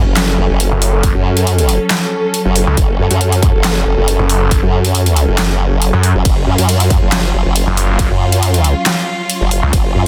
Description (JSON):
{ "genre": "heavy wobble dubstep", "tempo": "138 BPM", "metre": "4/4", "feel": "half-time", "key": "F# harmonic minor", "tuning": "A4 = 440 Hz", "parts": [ { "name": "warm studio string section", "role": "sustained chords", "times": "0.0-10.1 s", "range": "F#3 to A4", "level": "-22 LUFS", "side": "equal", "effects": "sidechain pumping, low-pass filter" }, { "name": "formant-sweep wobble bass", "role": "bass", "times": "0.0-10.0 s", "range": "F#1 to F#2", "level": "-16 LUFS", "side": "equal", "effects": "chorus, overdrive" }, { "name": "big-room dance drum kit", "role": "drums", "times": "0.2-9.8 s", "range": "handclaps, hi-hat, ride cymbal, snare drum", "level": "-20 LUFS", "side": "equal", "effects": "none" }, { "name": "snarling distorted saw bass", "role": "bass", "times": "0.7-9.7 s", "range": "F#1 to F#2", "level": "-15 LUFS", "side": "equal", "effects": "distortion, overdrive" }, { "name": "electronic kick drum", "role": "drums", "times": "1.0-9.8 s", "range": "none", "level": "-17 LUFS", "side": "equal", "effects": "none" } ], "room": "little or no reverb", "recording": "dense, heavily limited modern master", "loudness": "-13 LUFS", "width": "mono", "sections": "0.0-10.1 A section", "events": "none", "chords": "0.0 F#m", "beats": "0.17 0.60 | 1.03 1.47 1.90 2.34 | 2.77 3.21 3.64 4.08 | 4.51 4.95 5.38 5.82 | 6.25 6.69 7.12 7.56 | 7.99 8.43 8.86 9.29 | 9.73" }